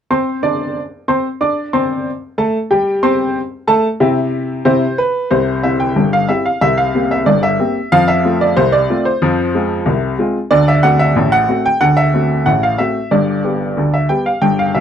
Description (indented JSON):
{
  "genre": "ragtime piano",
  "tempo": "92 BPM",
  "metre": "2/4",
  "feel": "straight",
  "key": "C major",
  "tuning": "A4 = 442 Hz",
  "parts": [
    { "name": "clear upright piano", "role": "solo", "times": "0.1-14.8 s", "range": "G1 to D6", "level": "-12 LUFS", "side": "equal", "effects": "none" }
  ],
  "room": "light reverb",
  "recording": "dry, close 1970s-style studio recording",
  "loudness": "-12 LUFS",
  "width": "side -8 dB against mid",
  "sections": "0.1-5.3 A section; 5.3-14.8 B section",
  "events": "none",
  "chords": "0.1 C5; 5.3 C; 6.6 C5; 7.9 F; 9.2 Fm; 10.5 D7; 13.1 G",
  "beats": "| 0.10 0.76 | 1.41 2.05 | 2.70 3.35 | 4.00 4.66 | 5.32 5.97 | 6.62 7.27 | 7.92 8.57 | 9.21 9.86 | 10.51 11.16 | 11.81 12.46 | 13.11 13.77 | 14.43"
}